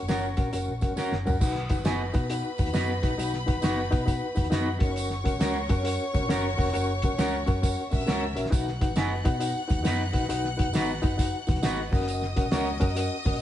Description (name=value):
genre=uptempo 1960s-style soul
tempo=135 BPM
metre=4/4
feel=swing 65% on 8ths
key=B major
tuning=A4 = 442 Hz
part: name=clear studio string section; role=second line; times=0.0-13.4 s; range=B4 to F#6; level=-35 LUFS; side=left 1 dB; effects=none
part: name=reed electric piano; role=accompaniment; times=0.0-13.4 s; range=C#4 to G#5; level=-30 LUFS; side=left 2 dB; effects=overdrive, fast tremolo
part: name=vintage muted fingered electric bass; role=bass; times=0.0-13.4 s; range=E#1 to B2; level=-32 LUFS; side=equal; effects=none
part: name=electric guitar at the edge of break-up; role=stabs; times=0.1-12.7 s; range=C#4 to B4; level=-34 LUFS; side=right 2 dB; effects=spring reverb
part: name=cloth-damped thuddy drum kit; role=drums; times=0.1-13.4 s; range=crash cymbal, hi-hat, kick drum, snare drum, toms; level=-27 LUFS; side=equal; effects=none
part: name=tambourine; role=percussion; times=0.1-13.3 s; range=none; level=-43 LUFS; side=right 5 dB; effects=none
room=moderate stone room reverb, RT60 1.3 s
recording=band playing live in one room, vinyl crackle, nothing above 10.6 kHz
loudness=-24 LUFS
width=side -12 dB against mid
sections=0.0-1.4 A section; 1.4-13.4 B section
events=drum fill 1.0-1.4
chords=0.0 F#; 1.4 B; 4.7 F#; 8.5 B; 11.9 F#